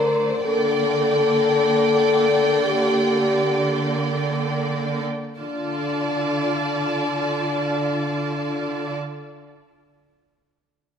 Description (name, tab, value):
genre	classical, slow romantic movement for symphony orchestra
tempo	free time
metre	none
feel	none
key	D minor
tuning	A4 = 436 Hz
part	warm studio violin section	melody	0.0-8.9 s	D5 to A5	-30 LUFS	right 1 dB	none
part	warm studio violin section	second line	0.0-9.0 s	C5 to D5	-27 LUFS	equal	none
part	rich studio viola section	accompaniment	0.0-8.9 s	A3 to F4	-28 LUFS	right 3 dB	none
part	mellow French horn section	sustained chords	0.0-8.9 s	D4 to Bb4	-22 LUFS	left 3 dB	none
part	rich studio cello section	bass	0.0-8.9 s	D3	-26 LUFS	right 3 dB	none
room	wet scoring stage reverb, RT60 2.0 s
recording	minimal, uncompressed stereo recording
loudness	-19 LUFS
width	side -7 dB against mid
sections	0.0-5.4 A section; 5.4-10.9 B section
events	slowing down 0.0-5.4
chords	0.5 Gm/D; 5.4 Dm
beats	free time